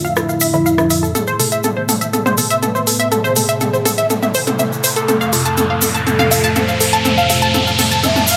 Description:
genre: melodic techno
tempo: 122 BPM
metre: 4/4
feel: straight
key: A harmonic minor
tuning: A4 = 440 Hz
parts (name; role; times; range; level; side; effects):
- expressive portamento lead; melody; 0.0-8.4 s; E4 to E5; -25 LUFS; equal; lush chorus, delay
- lush unison pad; sustained chords; 0.0-8.4 s; F2 to E5; -26 LUFS; equal; chorus
- tight sequenced synth; arpeggios; 0.0-8.4 s; A4 to A5; -20 LUFS; equal; chorus, phaser, delay
- filtered dub chord stab; stabs; 0.0-8.3 s; C3 to A4; -25 LUFS; equal; phaser, delay
- analog drone; drone; 0.0-8.4 s; A2; -28 LUFS; equal; chorus
- cabasa; percussion; 0.1-8.4 s; none; -25 LUFS; equal; none
- techno drum kit; drums; 0.2-8.4 s; hi-hat, rim click, toms; -21 LUFS; equal; high-pass filter on snare, high-pass filter on hats, high-pass filter on toms, high-pass filter on room
- riser; sound effects; 3.3-8.4 s; none; -23 LUFS; equal; none
room: moderate lush hall reverb, RT60 1.8 s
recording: none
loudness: -15 LUFS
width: mono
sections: 0.0-1.1 A section; 1.1-8.4 B section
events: filter sweep on analog synth lead 0.0-1.1, 1.1-8.4; filter sweep on synth stab 0.0-1.1, 1.1-8.4; build-up 1.1-8.4; drum fill 1.1-8.4; filter sweep on analog synth pad 1.1-8.4; riser 3.3-8.4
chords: 0.0 Dmadd9; 1.1 Amadd9; 5.1 F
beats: 0.17 0.66 | 1.15 1.64 2.13 2.62 | 3.12 3.61 4.10 4.59 | 5.08 5.58 6.07 6.56 | 7.05 7.54 8.04

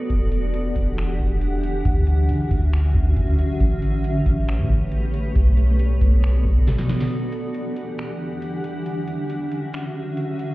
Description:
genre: hip hop, atmospheric cloud-rap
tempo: 137 BPM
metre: 4/4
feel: half-time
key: E dorian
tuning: A4 = 441 Hz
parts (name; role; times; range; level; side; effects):
- granular cloud pad; sustained chords; 0.0-10.5 s; D3 to F#5; -26 LUFS; equal; built-in reverb, sidechain pumping
- soft 808-style bass; bass; 0.1-7.1 s; E1 to D3; -20 LUFS; equal; none
- booming analog drum machine; drums; 0.1-10.5 s; finger snaps, hi-hat, kick drum, snare drum; -21 LUFS; equal; none
room: little or no reverb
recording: heard muffled through a wall, stone room reverb, EQ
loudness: -19 LUFS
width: side -18 dB against mid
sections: 0.0-10.5 A section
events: drum fill 6.7-7.1; break 7.1-10.5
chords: 0.1 Em9; 1.9 Dmaj9; 3.6 A9; 5.4 Bm7; 7.1 Em9; 8.9 Dmaj9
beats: | 0.10 0.54 0.98 1.41 | 1.85 2.29 2.73 3.17 | 3.60 4.04 4.48 4.92 | 5.36 5.79 6.23 6.67 | 7.11 7.55 7.98 8.42 | 8.86 9.30 9.73 10.17

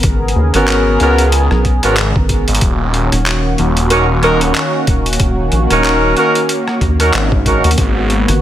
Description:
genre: glitch hop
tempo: 93 BPM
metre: 4/4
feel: swing 57% on 16ths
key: Eb minor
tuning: A4 = 439 Hz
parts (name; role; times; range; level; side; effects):
- warm analog pad; sustained chords; 0.0-8.4 s; Db3 to Bb4; -18 LUFS; equal; chorus, sidechain pumping
- rubbery square bass; bass; 0.0-8.4 s; Eb1 to Eb2; -15 LUFS; equal; none
- boom bap sampler-style drum kit; drums; 0.0-8.4 s; handclaps, hi-hat, rim click; -19 LUFS; equal; none
- electronic kick drum; drums; 0.0-7.9 s; none; -16 LUFS; equal; none
- warm horn section; stabs; 0.5-7.7 s; Cb4 to Bb4; -16 LUFS; right 1 dB; vintage 12-bit sampler grit, sidechain pumping, tape echo
- phased detuned saw bass; bass; 1.0-8.3 s; Eb1 to Db2; -14 LUFS; equal; phaser, overdrive
room: light reverb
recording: none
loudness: -11 LUFS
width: side -12 dB against mid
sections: 0.0-8.4 A section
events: none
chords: 0.0 Abm11; 2.6 Ebm7; 7.8 Abm11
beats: | 0.04 0.68 1.33 1.97 | 2.62 3.26 3.91 4.55 | 5.20 5.84 6.49 7.13 | 7.78

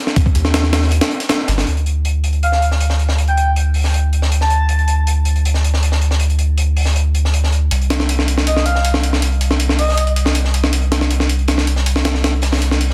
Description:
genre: drum and bass, jungle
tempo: 159 BPM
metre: 4/4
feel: straight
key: D phrygian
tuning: A4 = 441 Hz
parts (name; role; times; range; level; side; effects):
- breakbeat sampler-style drum kit; drums; 0.1-1.7, 7.7-12.9 s; hi-hat, kick drum, snare drum; -20 LUFS; equal; none
- crunchy breakbeat drum kit; drums; 0.2-12.9 s; hi-hat, snare drum; -28 LUFS; equal; high-pass filter on hats, high-pass filter on snare, high-pass filter on room
- soft dub sub bass; bass; 0.4-12.9 s; G1 to Eb2; -17 LUFS; equal; tube saturation
- breathy flute-like synth lead; melody; 2.4-4.9, 8.5-10.1 s; Eb5 to A5; -24 LUFS; equal; chorus, dub echo
room: studio ambience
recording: dense, heavily limited modern master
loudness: -16 LUFS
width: mono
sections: 0.0-1.7 A section; 1.7-12.9 B section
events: drop 0.0-1.7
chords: 0.0 N.C.; 1.7 D5; 7.7 N.C.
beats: | 0.17 0.54 0.92 1.30 | 1.67 2.05 2.43 2.81 | 3.18 3.56 3.94 4.32 | 4.69 5.07 5.45 5.83 | 6.20 6.58 6.96 7.33 | 7.71 8.09 8.47 8.84 | 9.22 9.60 9.98 10.35 | 10.73 11.11 11.48 11.86 | 12.24 12.62

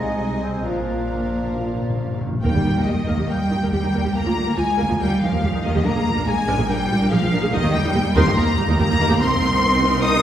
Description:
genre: classical, dramatic, fast romantic movement for symphony orchestra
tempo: 141 BPM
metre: 4/4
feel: rubato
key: Eb major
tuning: A4 = 439 Hz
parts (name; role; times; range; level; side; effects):
- clear symphonic violin section; melody; 0.0-10.2 s; Eb5 to Eb6; -26 LUFS; left 3 dB; none
- bright clarinet; second line; 0.0-2.2 s; C4 to Eb4; -34 LUFS; equal; none
- dark cor anglais; second line; 0.0-2.2 s; Eb5 to F5; -36 LUFS; right 5 dB; none
- mellow flute section; second line; 0.0-2.2 s; C5 to Eb5; -34 LUFS; equal; none
- warm symphonic violin section; second line; 0.0-10.2 s; Bb4 to Eb6; -27 LUFS; left 2 dB; none
- mellow bassoon; accompaniment; 0.0-2.2 s; F3 to Ab3; -32 LUFS; left 1 dB; none
- rich symphonic viola section; accompaniment; 0.0-10.2 s; D3 to Bb4; -25 LUFS; equal; none
- rich symphonic cello section; bass; 0.0-10.2 s; Bb2 to Eb4; -24 LUFS; right 2 dB; none
- rich symphonic double bass section; bass; 0.0-10.2 s; Bb1 to Eb2; -23 LUFS; right 1 dB; none
- mellow French horn section; sustained chords; 0.6-1.7 s; F3 to F4; -32 LUFS; left 1 dB; none
- timpani; percussion; 0.6-3.0 s; Bb2 to Eb3; -26 LUFS; left 1 dB; none
room: wet concert hall reverb, RT60 1.8 s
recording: heard from further back in the room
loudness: -17 LUFS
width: side -10 dB against mid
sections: 0.0-2.4 A section; 2.4-10.2 B section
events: timpani fill 0.6-2.4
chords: 0.0 Ab/C; 0.6 Bb; 2.4 Eb; 4.2 Bb/D; 5.0 Eb; 5.9 Bb7; 7.5 Eb; 9.2 Cm7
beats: 0.19 | 0.64 1.09 1.54 1.99 | 2.43 2.87 3.30 3.73 | 4.15 4.58 5.00 5.43 | 5.85 6.27 6.69 7.11 | 7.53 7.95 8.37 8.79 | 9.21 9.63 10.04

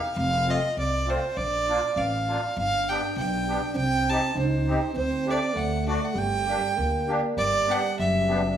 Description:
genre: alpine folk, alpine dance band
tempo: 100 BPM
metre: 2/4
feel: straight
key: G minor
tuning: A4 = 441 Hz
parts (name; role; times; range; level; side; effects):
- rich fiddle; melody; 0.0-8.5 s; C5 to A5; -26 LUFS; right 2 dB; none
- upright bass; bass; 0.2-8.6 s; F1 to D2; -29 LUFS; equal; none
- musette accordion; accompaniment; 0.5-8.4 s; A3 to G4; -31 LUFS; left 2 dB; none
- dark euphonium; second line; 2.6-8.5 s; G3 to Eb4; -30 LUFS; right 3 dB; none
room: moderate recital hall reverb, RT60 1.7 s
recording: small room reverb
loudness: -23 LUFS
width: side -9 dB against mid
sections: 0.0-7.4 A section; 7.4-8.6 B section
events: none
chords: 0.2 F; 1.4 Bb; 2.6 G; 3.8 Cm; 5.0 D7sus4; 5.6 D; 6.2 Gm; 7.4 G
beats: | 0.16 0.76 | 1.36 1.96 | 2.56 3.17 | 3.76 4.36 | 4.96 5.56 | 6.16 6.77 | 7.37 7.97

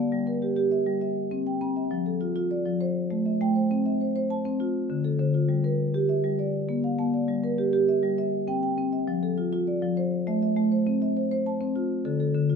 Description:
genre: southern african traditional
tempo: 134 BPM (dotted quarters)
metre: 12/8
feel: straight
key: G equiheptatonic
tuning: A4 = 441 Hz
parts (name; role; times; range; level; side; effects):
- marimba with soft mallets; solo; 0.0-12.6 s; D3 to Bb5+43c; -24 LUFS; equal; none
room: moderate studio reverb, RT60 0.5 s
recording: minimal, uncompressed stereo recording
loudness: -24 LUFS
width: side -6 dB against mid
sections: 0.0-7.3 A section; 7.3-12.6 B section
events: none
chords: 0.1 Gm; 1.0 C; 1.9 F; 2.8 Am; 3.7 C; 4.6 Dm; 5.5 Gm; 6.4 Bb; 7.3 Gm; 8.2 C; 9.1 F; 10.0 Am; 10.9 C; 11.8 Dm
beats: | 0.12 0.57 1.01 1.46 | 1.91 2.36 2.81 3.26 | 3.70 4.15 4.60 5.05 | 5.50 5.94 6.39 6.84 | 7.29 7.73 8.18 8.63 | 9.07 9.52 9.97 10.41 | 10.86 11.31 11.75 12.20

